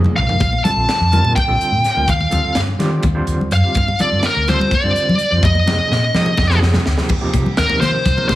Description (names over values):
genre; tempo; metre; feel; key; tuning
electric jazz fusion; 251 BPM (eighths); 7/8; straight; unclear; A4 = 440 Hz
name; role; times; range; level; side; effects
overdriven tine electric piano; accompaniment; 0.0-8.4 s; C3 to C5; -23 LUFS; right 2 dB; fast tremolo
congas; percussion; 0.0-8.4 s; none; -23 LUFS; left 2 dB; none
crisp fusion drum kit; drums; 0.1-8.4 s; crash cymbal, hi-hat, kick drum, snare drum, toms; -21 LUFS; equal; none
smooth overdriven lead guitar; melody; 0.2-8.4 s; Bb4 to A5; -18 LUFS; equal; none
fretless electric bass; bass; 0.2-8.4 s; Bb1 to G3; -18 LUFS; equal; wide subtle chorus
room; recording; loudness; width
light reverb, small room ambience; small room reverb; -13 LUFS; side -15 dB against mid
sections
0.0-7.1 A section; 7.1-8.4 B section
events
drum fill 0.0-0.4, 5.7-7.1; lead electric guitar solo 7.1-8.4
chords
0.4 Bbmaj7; 2.1 Eb69; 3.8 Gsus2; 5.4 Fm7; 7.1 Eb69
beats
0.16 | 0.40 0.64 0.88 1.12 1.36 1.60 1.84 | 2.08 2.32 2.56 2.80 3.04 3.28 3.52 | 3.75 3.99 4.23 4.47 4.71 4.95 5.19 | 5.43 5.67 5.91 6.14 6.38 6.62 6.86 | 7.10 7.34 7.58 7.82 8.06 8.29